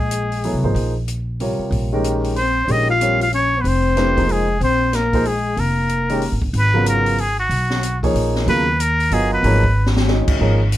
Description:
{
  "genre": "modal jazz",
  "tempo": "187 BPM",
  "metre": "3/4",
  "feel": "swing 63% on 8ths",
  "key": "Bb dorian, G# dorian from 6.5 s",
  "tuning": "A4 = 440 Hz",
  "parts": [
    { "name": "trumpet with straight mute", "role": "melody", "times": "0.0-9.9 s", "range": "F#4 to F5", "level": "-20 LUFS", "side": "equal", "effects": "none" },
    { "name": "breathy trombone", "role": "second line", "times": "0.0-6.4 s", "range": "Ab3 to F4", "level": "-23 LUFS", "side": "left 4 dB", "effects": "none" },
    { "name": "upright bass", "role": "bass", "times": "0.0-10.8 s", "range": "F1 to D#2", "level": "-20 LUFS", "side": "equal", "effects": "none" },
    { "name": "open jazz drum kit", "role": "drums", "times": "0.1-10.8 s", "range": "crash cymbal, hi-hat, kick drum, snare drum", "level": "-26 LUFS", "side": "left 1 dB", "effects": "none" },
    { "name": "warm grand piano", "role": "accompaniment", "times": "0.4-10.6 s", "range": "C3 to D#5", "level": "-21 LUFS", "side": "right 1 dB", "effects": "none" }
  ],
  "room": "little or no reverb",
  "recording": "none",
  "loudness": "-16 LUFS",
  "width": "side -13 dB against mid",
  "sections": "0.0-6.5 A section; 6.5-10.8 B section",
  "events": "drum fill 9.8-10.1",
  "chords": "0.0 Bbm9; 6.5 G#m7",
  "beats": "0.11 0.43 | 0.75 1.07 1.40 | 1.72 2.04 2.36 | 2.68 3.00 3.32 | 3.65 3.97 4.29 | 4.61 4.93 5.25 | 5.57 5.89 6.22 | 6.54 6.86 7.18 | 7.50 7.82 8.14 | 8.47 8.79 9.11 | 9.43 9.75 10.07 | 10.39 10.71"
}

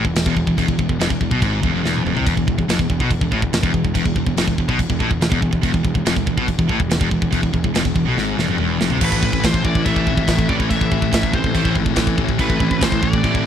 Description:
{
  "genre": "heavy metal",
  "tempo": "142 BPM",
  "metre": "4/4",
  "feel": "straight",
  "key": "unclear",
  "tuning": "A4 = 441 Hz",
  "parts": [
    { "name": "high-gain distorted guitar", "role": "riff", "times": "0.0-13.4 s", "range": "E2 to A3", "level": "-24 LUFS", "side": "right 13 dB", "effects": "distortion" },
    { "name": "sludgy distorted guitar", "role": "riff", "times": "0.0-13.5 s", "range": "E2 to E3", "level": "-22 LUFS", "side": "left 10 dB", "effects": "overdrive" },
    { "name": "fuzz picked electric bass", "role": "bass", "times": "0.0-13.4 s", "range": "E1 to C2", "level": "-23 LUFS", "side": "right 1 dB", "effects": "overdrive" },
    { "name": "tight metal drum kit", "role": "drums", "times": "0.0-13.4 s", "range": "crash cymbal, kick drum, snare drum, toms", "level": "-20 LUFS", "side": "equal", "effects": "none" },
    { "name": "high-gain lead guitar", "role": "melody", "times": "9.0-13.5 s", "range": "B4 to E5", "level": "-25 LUFS", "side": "right 1 dB", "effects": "distortion, ping-pong delay" },
    { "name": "hollow soft pad", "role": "sustained chords", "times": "9.0-13.5 s", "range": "A3 to A4", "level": "-28 LUFS", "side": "right 3 dB", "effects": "chorus" }
  ],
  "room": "little or no reverb",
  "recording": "rough home demo mix",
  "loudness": "-16 LUFS",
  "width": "side -9 dB against mid",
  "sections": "0.0-9.0 A section; 9.0-13.5 B section",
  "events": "drum fill 1.8-2.3, 8.2-9.0",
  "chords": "0.0 E; 9.0 Am",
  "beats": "0.15 | 0.57 0.99 1.42 1.84 | 2.26 2.68 3.11 3.53 | 3.95 4.37 4.79 5.21 | 5.64 6.06 6.48 6.90 | 7.33 7.75 8.17 8.59 | 9.01 9.44 9.86 10.28 | 10.70 11.12 11.55 11.97 | 12.39 12.82 13.24"
}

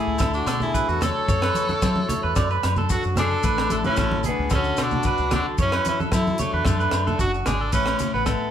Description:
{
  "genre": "highlife guitar band",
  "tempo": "112 BPM",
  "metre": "4/4",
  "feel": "straight",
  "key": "unclear",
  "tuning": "A4 = 440 Hz",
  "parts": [
    { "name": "edgy tenor saxophone", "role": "melody", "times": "0.0-8.5 s", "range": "A3 to A4", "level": "-27 LUFS", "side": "left 1 dB", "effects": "none" },
    { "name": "clear trumpet", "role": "second line", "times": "0.0-7.4 s", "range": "D4 to C#5", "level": "-31 LUFS", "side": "left 5 dB", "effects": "none" },
    { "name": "electric guitar at the edge of break-up", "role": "accompaniment", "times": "0.0-8.5 s", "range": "F#2 to A4", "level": "-32 LUFS", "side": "left 5 dB", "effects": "none" },
    { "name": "electric guitar at the edge of break-up", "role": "arpeggios", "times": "0.0-8.5 s", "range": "F#4 to D5", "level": "-26 LUFS", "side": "right 5 dB", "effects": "none" },
    { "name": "fingered electric bass", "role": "bass", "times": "0.1-8.3 s", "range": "F#1 to F#3", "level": "-27 LUFS", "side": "equal", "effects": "none" },
    { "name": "tight funk drum kit", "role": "drums", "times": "0.2-8.4 s", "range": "crash cymbal, hi-hat, kick drum, rim click", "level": "-26 LUFS", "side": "equal", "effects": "none" },
    { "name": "agogo bells", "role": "percussion", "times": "0.2-8.4 s", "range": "none", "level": "-35 LUFS", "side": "left 5 dB", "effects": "none" },
    { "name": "maracas", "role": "percussion", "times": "0.2-8.4 s", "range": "none", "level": "-39 LUFS", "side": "left 8 dB", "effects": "none" },
    { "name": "congas", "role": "percussion", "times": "0.6-8.1 s", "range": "none", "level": "-30 LUFS", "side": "right 1 dB", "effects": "none" }
  ],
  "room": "moderate large studio reverb, RT60 1.2 s",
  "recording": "band playing live in one room",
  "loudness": "-20 LUFS",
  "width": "side -9 dB against mid",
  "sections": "0.0-7.7 A section",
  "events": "none",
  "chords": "0.2 D; 1.3 F#m7; 2.4 D/F#; 3.4 A; 4.5 D; 5.6 F#m7; 6.6 D/F#; 7.7 A",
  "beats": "0.20 0.73 | 1.27 1.81 2.35 2.89 | 3.43 3.96 4.50 5.04 | 5.57 6.11 6.65 7.19 | 7.72 8.26"
}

